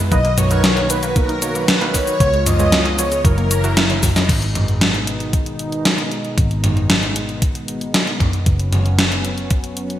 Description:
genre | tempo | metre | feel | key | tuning
synthwave | 115 BPM | 4/4 | straight | G# minor | A4 = 440 Hz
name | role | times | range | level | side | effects
brassy analog pad | sustained chords | 0.0-10.0 s | B2 to F#4 | -25 LUFS | left 1 dB | chorus, sidechain pumping
wide unison pluck | arpeggios | 0.0-4.2 s | E#3 to C#5 | -28 LUFS | left 1 dB | digital delay
overdriven tine electric piano | stabs | 0.0-4.3 s | F#3 to D#5 | -26 LUFS | right 3 dB | fast tremolo, digital delay
vintage muted picked electric bass | bass | 0.0-10.0 s | F#1 to C#2 | -21 LUFS | equal | none
warm velvety synth lead | melody | 0.1-4.0 s | A#4 to D#5 | -21 LUFS | equal | chorus, digital delay
string machine, violins | second line | 0.1-4.0 s | A#4 to D#5 | -28 LUFS | left 1 dB | ensemble chorus, digital delay
electronic kick drum | drums | 0.1-9.6 s | none | -18 LUFS | equal | overdrive
gated 80s digital drum machine | drums | 0.1-10.0 s | crash cymbal, hi-hat, shaker, snare drum, toms | -18 LUFS | equal | gated reverb, gated reverb snare, overdrive
room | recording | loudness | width
moderate lush hall reverb, RT60 2.0 s | bright 1980s-style digital production | -15 LUFS | side -12 dB against mid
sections
0.0-4.3 A section; 4.3-10.0 B section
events
drum fill 3.8-4.3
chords
0.1 Bmaj7; 2.2 C#7; 3.2 F#7; 4.3 G#m; 8.5 F#5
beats
| 0.12 0.64 1.16 1.68 | 2.20 2.73 3.25 3.77 | 4.29 4.81 5.33 5.86 | 6.38 6.90 7.42 7.94 | 8.46 8.99 9.51

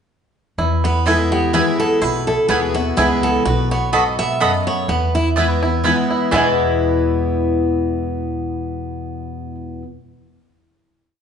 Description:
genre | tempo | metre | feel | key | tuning
bluegrass | 126 BPM | 3/4 | swing 54% on 8ths | E major | A4 = 440 Hz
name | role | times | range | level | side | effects
picked steel-string acoustic guitar | accompaniment | 0.6-9.8 s | E2 to E4 | -20 LUFS | left 3 dB | none
bluegrass banjo | arpeggios | 0.6-9.6 s | G#3 to A4 | -22 LUFS | right 3 dB | none
upright bass | bass | 0.6-9.5 s | B1 to E2 | -23 LUFS | equal | none
picked steel-string acoustic guitar | melody | 0.8-9.5 s | E4 to E5 | -23 LUFS | equal | none
mandolin | stabs | 1.1-9.9 s | B3 to B5 | -22 LUFS | right 2 dB | none
room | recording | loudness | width
wet large studio reverb, RT60 1.2 s | band playing live in one room, nothing above 10.7 kHz | -15 LUFS | side -7 dB against mid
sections
0.6-6.3 A section; 6.3-9.2 final chord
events
none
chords
0.6 E; 3.5 B; 4.9 E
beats
| 0.59 1.06 1.54 | 2.02 2.50 2.98 | 3.46 3.93 4.41 | 4.89 5.37 5.84 | 6.32 6.80 7.28 | 7.75 8.23 8.70

